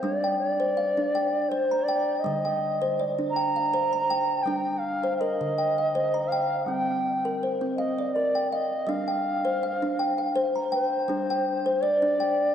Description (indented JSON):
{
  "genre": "world meditative, meditative tuned percussion",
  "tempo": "82 BPM",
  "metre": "3/4",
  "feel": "swing 53% on 16ths",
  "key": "unclear",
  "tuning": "A4 = 440 Hz",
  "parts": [
    { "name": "reedy bass bansuri", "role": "melody", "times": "0.0-12.5 s", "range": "C5 to Bb5", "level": "-27 LUFS", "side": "right 1 dB", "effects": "none" },
    { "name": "kalimba", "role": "arpeggios", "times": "0.0-12.5 s", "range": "D3 to Bb5", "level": "-26 LUFS", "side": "left 1 dB", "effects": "diffuse ambient delay" }
  ],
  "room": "wet church reverb, RT60 3.7 s",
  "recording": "worn, warbling old tape, cassette tape, warbly pitch drift",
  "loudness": "-23 LUFS",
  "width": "side -9 dB against mid",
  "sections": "0.0-12.5 A section",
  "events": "none",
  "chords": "0.0 Dm/G; 2.3 Eb; 6.7 C5/G; 11.1 N.C.",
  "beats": "| 0.04 0.78 1.51 | 2.25 2.99 3.72 | 4.46 5.20 5.93 | 6.67 7.40 8.14 | 8.88 9.61 10.35 | 11.08 11.82"
}